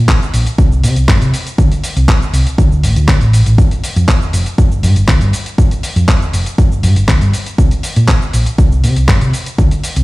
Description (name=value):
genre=filtered disco house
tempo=120 BPM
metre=4/4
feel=straight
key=G minor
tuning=A4 = 440 Hz
part: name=hollow-body short-scale fingered electric bass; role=bass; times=0.0-10.0 s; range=F1 to C3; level=-12 LUFS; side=equal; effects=tube saturation, sidechain pumping
part: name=dusty soul sampler-style drum kit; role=drums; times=0.1-10.0 s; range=handclaps, hi-hat, shaker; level=-20 LUFS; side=equal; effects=sidechain pumping on hats, sidechain pumping on perc
part: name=electronic kick drum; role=drums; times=0.1-9.7 s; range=none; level=-11 LUFS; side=equal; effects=none
room=digital ambience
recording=played on a big sound system in a bare room, stone room reverb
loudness=-10 LUFS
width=side -20 dB against mid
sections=0.0-10.0 A section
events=none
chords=none